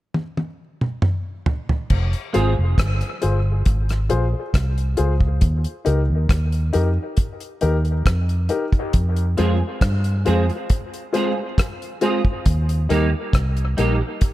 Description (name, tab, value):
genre	dub reggae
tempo	68 BPM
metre	4/4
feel	straight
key	F minor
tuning	A4 = 441 Hz
part	damped 70s drum kit	drums	0.1-14.3 s	crash cymbal, hi-hat, kick drum, rim click, toms	-21 LUFS	equal	none
part	vintage muted fingered electric bass	bass	1.9-14.0 s	F1 to G2	-19 LUFS	equal	none
part	clean electric guitar	accompaniment	2.3-2.5, 9.4-14.1 s	G3 to Ab4	-25 LUFS	right 5 dB	ensemble chorus, dub echo
part	dark upright piano	stabs	2.3-13.9 s	Eb4 to C5	-26 LUFS	left 5 dB	dub echo
room	small room reverb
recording	echo-heavy mix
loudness	-18 LUFS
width	side -16 dB against mid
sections	0.0-1.9 A section; 1.9-8.9 B section; 8.9-14.3 C section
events	drum fill 0.1-1.9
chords	0.0 N.C.; 1.9 Fm; 5.4 Eb; 8.9 Fm; 12.5 Eb